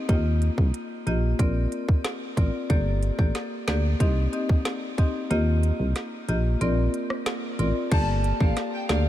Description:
dancehall; 92 BPM; 4/4; straight; G minor; A4 = 440 Hz
marimba with hard mallets; accompaniment; 0.1-9.0 s; Bb3 to Eb5; -28 LUFS; left 2 dB
solid FM bass; bass; 0.1-9.1 s; G1 to Eb2; -24 LUFS; equal
island pop drum kit; drums; 0.1-9.0 s; crash cymbal, hi-hat, kick drum, rim click, snare drum; -26 LUFS; equal
warm studio violin section; melody; 7.9-9.0 s; F5 to A5; -30 LUFS; equal; ping-pong delay
light reverb; -22 LUFS; side -13 dB against mid
0.0-7.9 A section; 7.9-9.1 B section
kick muted 5.3-7.9
0.1 Ebadd9; 1.4 Bbadd9; 2.7 Gmadd9; 4.0 Cm; 5.3 Ebadd9; 6.6 Bbadd9; 7.9 Gmadd9

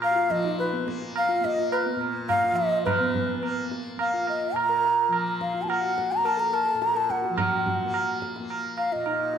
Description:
indian classical, Hindustani; 106 BPM; 4/4; straight; A4 = 440 Hz
bansuri; melody; 0.0-9.4 s; Cb5 to Bb5; -25 LUFS; left 1 dB
tanpura; drone; 0.0-9.4 s; Bb2 to Bb3; -34 LUFS; left 2 dB
tabla; percussion; 0.0-9.4 s; -29 LUFS; right 4 dB
mellow tine electric piano; second line; 0.1-9.4 s; Cb4 to Bb4; -33 LUFS; right 1 dB; medium stereo tremolo
wet recital hall reverb, RT60 1.6 s; -23 LUFS; side -8 dB against mid
0.0-2.9 A section; 2.9-9.4 B section

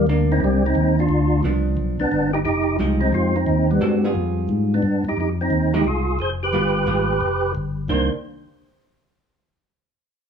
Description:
soul jazz organ trio; 176 BPM; 4/4; swing 64% on 8ths; C minor; A4 = 444 Hz
percussive tonewheel organ; melody; 0.0-8.1 s; G3 to C5; -21 LUFS; equal; slow rotary speaker, overdrive, chorus vibrato, plate reverb
tonewheel organ; bass; 0.0-8.1 s; F1 to Ab2; -22 LUFS; equal; overdrive, stopped rotary speaker
vintage hollow-body jazz guitar; accompaniment; 0.1-8.1 s; Eb3 to A4; -25 LUFS; right 2 dB
moderate club reverb, RT60 0.9 s; -18 LUFS; side -7 dB against mid
0.0-2.5 A section; 2.5-7.9 B section; 7.9-9.3 C section
0.0 Cm9; 1.1 G7; 2.5 Fm9; 3.8 G7b9; 5.2 Fm9; 6.5 G7b9; 7.9 Cm9

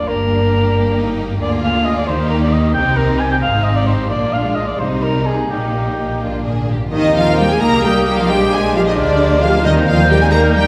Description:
quick classical-period movement for symphony orchestra; 88 BPM (dotted quarters); 6/8; rubato; Eb major; A4 = 440 Hz
rich chamber violin section; melody; 0.0-10.7 s; Eb4 to Bb5; -24 LUFS; equal
mellow cor anglais; second line; 0.0-10.7 s; G4 to Ab5; -23 LUFS; equal
rich chamber violin section; second line; 0.0-10.7 s; Bb3 to F4; -27 LUFS; equal
rich symphonic viola section; accompaniment; 0.0-10.6 s; G3 to Bb4; -24 LUFS; equal
rich chamber double bass section; bass; 0.0-10.7 s; G1 to Eb2; -22 LUFS; equal
warm chamber cello section; bass; 0.0-10.6 s; G2 to Bb3; -23 LUFS; equal
timpani; percussion; 4.1-6.9, 9.7-10.3 s; Bb2 to Eb3; -26 LUFS; equal
bright clarinet; second line; 6.9-10.7 s; Eb4 to G4; -28 LUFS; equal
warm bassoon; accompaniment; 6.9-10.7 s; G3 to Bb3; -24 LUFS; equal
mellow French horn section; sustained chords; 7.4-10.2 s; Bb3 to G4; -27 LUFS; equal
mellow large flute ensemble; second line; 7.6-10.7 s; D6 to G6; -24 LUFS; equal
wet recital hall reverb, RT60 1.6 s; recorded in a church or concert hall; -15 LUFS; mono
0.0-6.9 A section; 6.9-10.7 B section
timpani fill 6.2-6.9
0.1 Gm; 1.4 Bb7/D; 2.1 Eb; 2.8 Cm; 3.4 Ab; 4.1 Bb; 4.8 Cm; 5.5 Eb/Bb; 6.9 Eb; 8.3 Bb13; 9.7 Eb

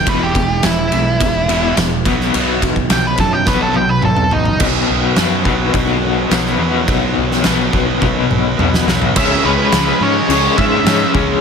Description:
quiet-loud alternative rock; 106 BPM; 4/4; straight; A4 = 440 Hz
octave-fuzz lead guitar; melody; 0.0-4.6, 9.2-11.1 s; D#4 to G5; -19 LUFS; right 2 dB; distortion, digital delay
twelve-string electric guitar; arpeggios; 0.0-4.6 s; B2 to C#4; -26 LUFS; right 7 dB; wide subtle chorus
distorted electric guitar; riff; 0.0-11.4 s; E2 to C#4; -21 LUFS; right 11 dB; overdrive
raw garage guitar; riff; 0.0-11.4 s; E2 to C#4; -19 LUFS; left 14 dB; overdrive, tremolo
fretless electric bass; bass; 0.0-11.3 s; E1 to G#2; -21 LUFS; equal
oversized low-tuned drum kit; drums; 0.1-11.3 s; crash cymbal, kick drum, ride cymbal, snare drum, toms; -17 LUFS; equal
tonewheel organ; sustained chords; 4.6-9.1 s; D#3 to B4; -28 LUFS; equal
crunchy overdriven guitar; riff; 9.2-11.4 s; C#3 to C#4; -20 LUFS; right 1 dB
light reverb, studio ambience; -12 LUFS; side -6 dB against mid
0.0-4.6 A section; 4.6-9.2 B section; 9.2-11.4 C section
lead electric guitar solo 0.0-4.6; drum fill 3.5-4.6, 8.0-9.2
0.1 E; 2.1 Badd9; 9.2 C#m

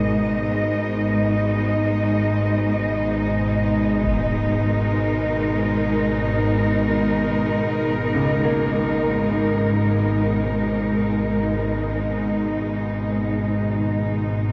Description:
dark ambient drone; free time; G# minor; A4 = 440 Hz
rich symphonic cello section; sustained chords; 0.0-14.5 s; B2 to D#5; -24 LUFS; equal
organ-like drone; drone; 0.0-14.5 s; G#1 to G#2; -25 LUFS; equal; ensemble chorus, built-in reverb
bronze singing bowl; texture; 0.0-14.5 s; A#4; -44 LUFS; equal
impact; percussion; 4.0-4.2 s; -33 LUFS; equal; low-pass filter on sfx
bright grand piano; arpeggios; 8.1-14.5 s; C#2 to A#3; -32 LUFS; equal
wet huge ambient reverb, RT60 7.5 s; dreamy mix soaked in reverb, cassette tape; -21 LUFS; mono
0.0-14.5 A section
fade-in on impacts and reversed cymbals 0.0-14.5; filter sweep on synth drone 0.0-14.5
0.0 G#madd9

